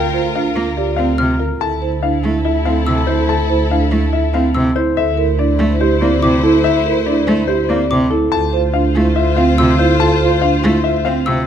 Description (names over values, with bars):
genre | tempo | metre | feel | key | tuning
classical, minimalist pattern music | 143 BPM | 4/4 | straight | D minor | A4 = 437 Hz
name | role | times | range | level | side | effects
warm concert grand piano | melody | 0.0-11.3 s | A4 to A5 | -21 LUFS | left 8 dB | none
dark French horn | second line | 0.0-11.4 s | E4 to F4 | -21 LUFS | right 2 dB | none
rich symphonic string section | sustained chords | 0.0-11.4 s | E4 to C5 | -23 LUFS | left 4 dB | none
marimba with soft mallets | arpeggios | 0.0-11.3 s | C4 to C5 | -19 LUFS | right 5 dB | none
dark symphonic double bass section | bass | 0.0-11.5 s | D2 | -18 LUFS | right 1 dB | none
rich cello | accompaniment | 0.6-11.4 s | C3 to C4 | -19 LUFS | equal | none
xylophone with rubber mallets | arpeggios | 1.2-11.5 s | D6 to F6 | -24 LUFS | left 3 dB | none
room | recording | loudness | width
light reverb | close, detailed microphones | -13 LUFS | side -9 dB against mid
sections
0.0-11.5 A section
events
none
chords
0.0 Gm7/D; 1.6 Fmaj7/D; 5.0 C9/D; 8.3 Dm7